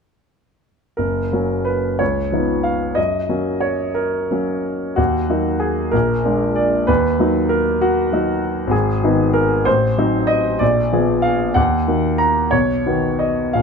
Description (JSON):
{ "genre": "classical, romantic character piece for solo piano", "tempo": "55-67 BPM (dotted quarters)", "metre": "6/8", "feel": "rubato", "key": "F# major", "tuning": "A4 = 442 Hz", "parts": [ { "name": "clear concert grand piano", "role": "solo", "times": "1.0-13.6 s", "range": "F#1 to Bb5", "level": "-16 LUFS", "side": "equal", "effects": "none" } ], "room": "light reverb", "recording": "close, detailed microphones", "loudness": "-16 LUFS", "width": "side -5 dB against mid", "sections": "1.0-13.6 A section", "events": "none", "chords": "1.0 F#; 2.0 C#9; 3.0 F#; 5.0 D#m; 5.9 A#7; 6.9 D#m; 8.7 Abm; 9.7 Adim7; 10.6 Bb7b9; 11.6 Ebm; 12.5 B" }